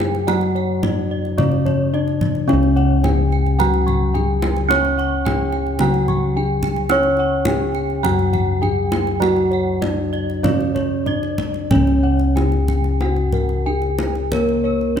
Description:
Javanese gamelan; 92-109 BPM; 4/4; straight; C# pelog barang; A4 = 436 Hz
gamelan-type bronze metallophone; melody; 0.0-15.0 s; A#3+20c to C#5; -23 LUFS; left 1 dB
gamelan-type bronze metallophone; accompaniment; 0.0-11.7 s; C#3 to C#4; -22 LUFS; right 2 dB
gamelan-type bossed gongs; arpeggios; 0.0-15.0 s; A#4+20c to C#6; -28 LUFS; left 5 dB
gamelan-type bronze metallophone; arpeggios; 0.0-15.0 s; A#4+20c to C#6; -28 LUFS; right 6 dB
gamelan-type bossed gongs; bass; 0.0-15.0 s; C#2 to C#5; -20 LUFS; left 1 dB
kendang; percussion; 0.0-15.0 s; -25 LUFS; right 1 dB
light reverb; close, detailed microphones; -16 LUFS; side -8 dB against mid
0.0-11.7 A section; 11.7-15.0 B section
| 0.28 0.83 1.39 1.94 | 2.49 3.04 3.60 4.15 | 4.70 5.25 5.81 6.36 | 6.91 7.47 8.04 8.62 | 9.21 9.82 10.43 11.06 | 11.71 12.36 13.01 13.67 | 14.32 14.97

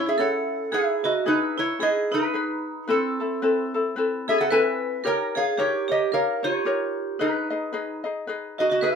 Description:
Hawaiian; 111 BPM; 4/4; swing 58% on 8ths; E major; A4 = 441 Hz
metal-body resonator slide guitar; melody; 0.0-9.0 s; C4 to G#5; -25 LUFS; equal
vibraphone with hard mallets; second line; 0.0-9.0 s; C4 to B4; -28 LUFS; right 5 dB
ukulele; accompaniment; 0.0-9.0 s; C4 to D#5; -26 LUFS; left 3 dB
moderate studio ambience, RT60 0.5 s; minimal, uncompressed stereo recording; -22 LUFS; side -6 dB against mid
0.7-9.0 A section
0.0 A; 0.7 Emaj7; 2.9 Amadd9; 5.0 D#7; 7.2 G#m
0.19 | 0.73 1.26 1.80 2.34 | 2.88 3.42 3.96 4.50 | 5.04 5.58 6.12 6.66 | 7.20 7.74 8.28 8.82

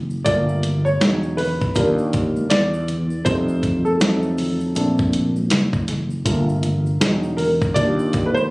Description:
hip hop, jazz-hop; 80 BPM; 4/4; swing 61% on 16ths; G minor; A4 = 439 Hz
sustaining fretless electric bass; bass; 0.0-8.5 s; E1 to F2; -21 LUFS; equal
maracas and congas; percussion; 0.1-8.5 s; -32 LUFS; equal
dark grand piano; accompaniment; 0.2-8.5 s; F#3 to D5; -21 LUFS; equal
dusty soul sampler-style drum kit; drums; 0.3-8.3 s; hi-hat, kick drum, snare drum; -21 LUFS; equal
light reverb; recorded on a phone in the room, studio reverb; -17 LUFS; side -24 dB against mid
0.3-8.5 A section
grand piano solo 0.3-8.5
0.3 Gm9; 1.0 Emaj9; 1.8 Ebmaj9; 3.3 F7; 4.0 F7b9; 4.8 Bbmaj9; 6.3 Gm9; 7.0 Emaj9; 7.8 Ebmaj9
| 0.26 1.01 1.76 2.51 | 3.26 4.01 4.76 5.51 | 6.26 7.01 7.76

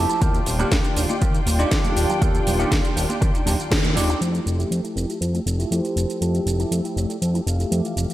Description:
filtered disco house; 120 BPM; 4/4; straight; F major; A4 = 439 Hz
bell-like tine electric piano; accompaniment; 0.0-8.1 s; Eb3 to G4; -26 LUFS; equal; medium stereo tremolo, phaser, sidechain pumping, low-pass filter
muted studio violin section; sustained chords; 0.0-8.1 s; F4 to E6; -32 LUFS; left 1 dB; vintage 12-bit sampler grit, sidechain pumping, low-pass filter
electric guitar with an envelope filter; riff; 0.0-8.0 s; A3 to A5; -32 LUFS; right 4 dB; wide subtle chorus, sidechain pumping, low-pass filter
fat analog bass; bass; 0.0-8.1 s; Eb1 to F2; -22 LUFS; equal; sidechain pumping, low-pass filter
house drum kit; drums; 0.1-8.1 s; hi-hat, shaker, snare drum; -28 LUFS; right 1 dB; sidechain pumping on hats, sidechain pumping on perc
tambourine and congas; percussion; 0.1-4.2 s; -32 LUFS; right 2 dB; sidechain pumping on perc, low-pass filter on perc
electronic kick drum; drums; 0.2-3.8 s; -22 LUFS; equal; overdrive
mellow trumpet section; melody; 5.7-8.1 s; C5 to F5; -37 LUFS; right 1 dB; sidechain pumping, low-pass filter, analog delay
moderate lush hall reverb, RT60 2.0 s; dreamy mix soaked in reverb; -19 LUFS; side -14 dB against mid
0.0-4.2 A section; 4.2-8.1 B section
clean electric guitar fill 0.0; band accent 3.7; filter sweep 4.2-8.1
0.2 Ebmaj9; 4.2 Fmaj9
| 0.22 0.72 1.22 1.72 | 2.22 2.72 3.22 3.72 | 4.22 4.72 5.22 5.72 | 6.22 6.72 7.22 7.72

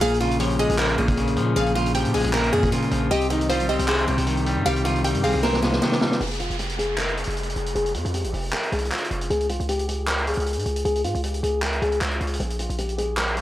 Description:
hip hop, trap; 155 BPM; 4/4; half-time; F minor; A4 = 440 Hz
picked steel-string acoustic guitar; melody; 0.0-13.4 s; Eb4 to Bb4; -26 LUFS; left 1 dB; low-pass filter, tape echo
glassy wavetable pluck; second line; 0.0-5.4 s; C5 to Ab5; -30 LUFS; right 1 dB; chorus, tape echo
electric guitar at the edge of break-up; accompaniment; 0.0-6.2 s; Bb2 to C5; -23 LUFS; left 1 dB
distorted 808-style bass; bass; 0.0-13.4 s; F1 to Bb2; -27 LUFS; equal; distortion
vintage drum kit; drums; 0.0-13.4 s; handclaps, hi-hat, kick drum, snare drum; -27 LUFS; equal
downlifter; sound effects; 6.2-9.3 s; -35 LUFS; right 1 dB
small room ambience; dry, gritty hardware recording; -20 LUFS; side -14 dB against mid
0.0-6.2 A section; 6.2-13.4 B section
drum fill 5.4-6.2; filter sweep on steel-string acoustic guitar 6.2-13.4
0.0 Bbm7; 3.1 Cm; 6.2 Fm; 9.3 Db; 12.4 Bb7(no3)
| 0.01 0.40 0.79 1.17 | 1.56 1.95 2.33 2.72 | 3.11 3.50 3.88 4.27 | 4.66 5.04 5.43 5.82 | 6.21 6.59 6.98 7.37 | 7.75 8.14 8.53 8.91 | 9.30 9.69 10.08 10.46 | 10.85 11.24 11.62 12.01 | 12.40 12.79 13.17

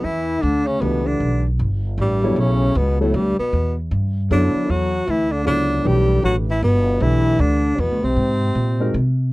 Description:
jazz; 155 BPM; 3/4; swing 64% on 8ths; E dorian; A4 = 435 Hz
breathy tenor saxophone; melody; 0.0-9.0 s; G3 to G4; -21 LUFS; equal
clear trombone; second line; 0.0-8.9 s; G2 to G3; -26 LUFS; left 3 dB
upright bass; bass; 0.0-9.3 s; G1 to B#2; -20 LUFS; equal
dark grand piano; accompaniment; 0.8-8.9 s; E3 to C#5; -24 LUFS; left 1 dB
little or no reverb; dry, close 1970s-style studio recording; -16 LUFS; side -20 dB against mid
0.0-9.3 A section
0.0 Em7; 8.2 G#
| 0.04 0.43 0.82 | 1.21 1.59 1.98 | 2.37 2.76 3.14 | 3.53 3.92 4.30 | 4.69 5.08 5.46 | 5.85 6.24 6.62 | 7.01 7.40 7.78 | 8.17 8.56 8.94

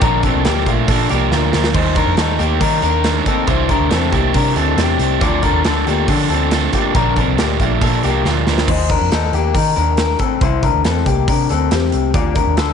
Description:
jangly indie pop; 139 BPM; 4/4; straight; A4 = 440 Hz
crunchy overdriven guitar; accompaniment; 0.0-8.7 s; Bb2 to Bb4; -19 LUFS; right 15 dB; spring reverb
electric guitar through a small old amp; arpeggios; 0.0-12.7 s; A3 to D5; -18 LUFS; left 12 dB; spring reverb, tape echo
vintage muted picked electric bass; bass; 0.0-12.7 s; Bb1 to Eb3; -19 LUFS; right 1 dB
big rock drum kit; drums; 0.0-12.7 s; crash cymbal, hi-hat, kick drum, snare drum; -20 LUFS; right 1 dB
small room ambience; 1960s-style stereo with parts hard left and right, nothing above 10.8 kHz; -13 LUFS; side -7 dB against mid
0.0-1.7 A section; 1.7-8.7 B section; 8.7-12.7 A section
drum fill 1.3-1.7, 8.3-8.7
0.0 Bb; 1.7 Eb; 3.5 Cadd9; 5.2 Dm; 6.9 Bb; 8.7 Eb5; 10.4 Cadd9; 12.1 Dm
| 0.02 0.45 0.89 1.32 | 1.75 2.18 2.61 3.04 | 3.48 3.91 4.34 4.78 | 5.21 5.65 6.08 6.51 | 6.95 7.38 7.82 8.25 | 8.68 9.12 9.55 9.98 | 10.42 10.85 11.28 11.71 | 12.15 12.58

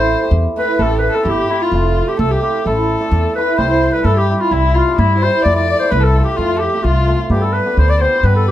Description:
klezmer; 129 BPM; 2/4; straight; A4 = 440 Hz
clear clarinet; melody; 0.0-8.5 s; E4 to D5; -18 LUFS; left 2 dB
warm violin; second line; 0.0-8.5 s; E4 to D5; -22 LUFS; left 3 dB
cimbalom; accompaniment; 0.0-8.4 s; G3 to A4; -19 LUFS; right 2 dB
upright bass; bass; 0.0-8.5 s; F1 to G2; -15 LUFS; equal
light reverb; dark, warm production; -12 LUFS; side -12 dB against mid
0.0-3.6 A section; 3.6-8.5 B section
0.0 Am; 1.7 F; 2.7 Am; 3.6 C; 5.5 F; 7.3 G
0.34 | 0.80 1.27 | 1.73 2.20 | 2.66 3.13 | 3.60 4.06 | 4.53 4.99 | 5.45 5.92 | 6.38 6.85 | 7.31 7.78 | 8.24

